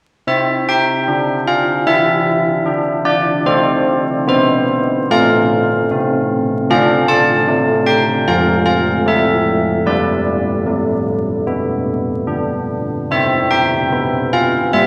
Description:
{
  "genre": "classical, tune for church bells",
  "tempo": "75 BPM",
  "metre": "4/4",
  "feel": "straight",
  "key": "C major",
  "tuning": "A4 = 444 Hz",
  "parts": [
    { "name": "old church bells", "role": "solo", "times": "0.3-14.9 s", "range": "F3 to A5", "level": "-15 LUFS", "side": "equal", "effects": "none" }
  ],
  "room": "moderate scoring stage reverb, RT60 2.0 s",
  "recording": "vinyl crackle",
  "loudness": "-15 LUFS",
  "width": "mono",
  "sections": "0.3-14.9 A section",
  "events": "none",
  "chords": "0.3 C; 3.4 F; 6.7 Dm; 9.9 G; 13.1 C"
}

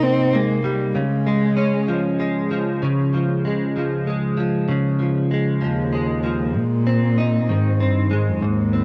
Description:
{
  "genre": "pop",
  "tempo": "64 BPM (dotted quarters)",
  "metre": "6/8",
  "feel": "straight",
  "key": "unclear",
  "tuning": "A4 = 440 Hz",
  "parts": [
    { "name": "dark cello", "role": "melody", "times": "0.0-2.2, 5.6-8.8 s", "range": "Eb2 to C4", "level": "-22 LUFS", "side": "equal", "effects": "cassette tape" },
    { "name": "direct-recorded clean electric guitar", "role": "accompaniment", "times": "0.0-8.8 s", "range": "Ab2 to Eb4", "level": "-22 LUFS", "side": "equal", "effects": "double-tracked, cassette tape" }
  ],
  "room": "light reverb, small room ambience",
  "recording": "home recording on cassette",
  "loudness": "-20 LUFS",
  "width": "mono",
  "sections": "0.0-2.8 A section; 2.8-6.5 B section; 6.5-8.8 C section",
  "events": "none",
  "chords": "0.0 Cm7; 1.0 Db; 6.5 Ab"
}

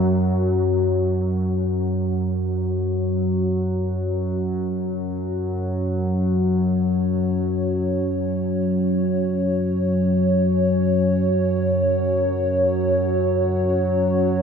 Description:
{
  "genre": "dark ambient drone",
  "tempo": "free time",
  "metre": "none",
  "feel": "none",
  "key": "unclear",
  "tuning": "A4 = 440 Hz",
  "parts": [
    { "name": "analog drone", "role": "drone", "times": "0.0-14.4 s", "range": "F#2 to F#3", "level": "-20 LUFS", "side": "equal", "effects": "chorus" },
    { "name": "dark analog pad", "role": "sustained chords", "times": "4.7-14.4 s", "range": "C#4 to C#5", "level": "-23 LUFS", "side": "equal", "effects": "chorus" }
  ],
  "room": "wet huge ambient reverb, RT60 8.0 s",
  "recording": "in a vast, echoing space",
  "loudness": "-19 LUFS",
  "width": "side -6 dB against mid",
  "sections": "0.0-4.7 A section; 4.7-14.4 B section",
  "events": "none",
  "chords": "0.0 N.C.; 4.7 F#5"
}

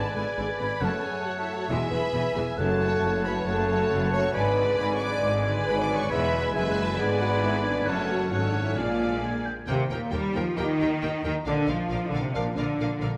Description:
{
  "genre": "cinematic",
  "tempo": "136 BPM",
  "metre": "4/4",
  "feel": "straight",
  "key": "F# minor",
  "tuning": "A4 = 441 Hz",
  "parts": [
    { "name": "clear symphonic violin section", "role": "melody", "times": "0.0-13.1 s", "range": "C#5 to G5", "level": "-40 LUFS", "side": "equal", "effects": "none" },
    { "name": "clear symphonic violin section", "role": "second line", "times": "0.0-13.1 s", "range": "Bb4 to D6", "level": "-40 LUFS", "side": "equal", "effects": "none" },
    { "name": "flute section", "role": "second line", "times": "0.0-9.5 s", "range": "G#5 to B5", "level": "-38 LUFS", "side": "equal", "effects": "none" },
    { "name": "mellow oboe", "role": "second line", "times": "0.0-9.6 s", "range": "E5 to G#5", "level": "-37 LUFS", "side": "equal", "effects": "none" },
    { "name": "warm clarinet", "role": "second line", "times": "0.0-9.4 s", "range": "C#5 to E5", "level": "-37 LUFS", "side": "equal", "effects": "none" },
    { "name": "clear symphonic viola section", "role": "accompaniment", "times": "0.0-13.1 s", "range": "D3 to B4", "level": "-37 LUFS", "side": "equal", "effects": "none" },
    { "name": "clear trombone section", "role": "sustained chords", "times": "0.0-12.5 s", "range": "B2 to D4", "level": "-39 LUFS", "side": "equal", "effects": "none" },
    { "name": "dark French horn section", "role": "sustained chords", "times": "0.0-13.0 s", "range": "Bb3 to D5", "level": "-32 LUFS", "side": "equal", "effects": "none" },
    { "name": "concert harp", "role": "arpeggios", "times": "0.0-13.2 s", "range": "E2 to B4", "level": "-41 LUFS", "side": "equal", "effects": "none" },
    { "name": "clear symphonic cello section", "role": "bass", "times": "0.2-13.0 s", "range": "E2 to G3", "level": "-32 LUFS", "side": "equal", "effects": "none" },
    { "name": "clear symphonic double bass section", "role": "bass", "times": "0.2-13.1 s", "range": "E1 to Eb2", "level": "-34 LUFS", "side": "equal", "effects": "none" },
    { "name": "timpani", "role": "percussion", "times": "2.6-3.2 s", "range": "F#2", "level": "-39 LUFS", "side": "equal", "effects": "none" }
  ],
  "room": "wet scoring stage reverb, RT60 1.8 s",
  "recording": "none",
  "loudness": "-26 LUFS",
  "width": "mono",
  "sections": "0.0-9.7 A section; 9.7-13.2 B section",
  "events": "none",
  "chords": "0.0 G#dim; 0.8 F#m; 1.7 E; 2.6 F#m; 4.4 G#dim; 6.1 E; 7.0 G#dim; 7.9 F#m; 8.8 A#7; 9.7 Eb; 11.5 Bb"
}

